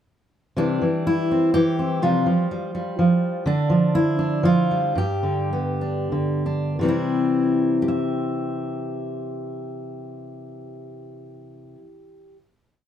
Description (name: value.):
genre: folk, solo fingerstyle acoustic guitar.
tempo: 86-126 BPM.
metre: 3/4.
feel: rubato.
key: C major.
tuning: A4 = 440 Hz.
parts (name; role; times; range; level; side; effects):
fingerpicked steel-string acoustic guitar; solo; 0.6-12.4 s; G2 to E5; -20 LUFS; equal; none.
room: light reverb.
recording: close, detailed microphones.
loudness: -20 LUFS.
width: side -10 dB against mid.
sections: 0.6-6.8 A section; 6.8-10.9 final chord.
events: slowing down 3.5-6.8.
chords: 0.6 C; 2.0 Fsus2/C; 3.5 Dm; 5.0 G; 6.8 C.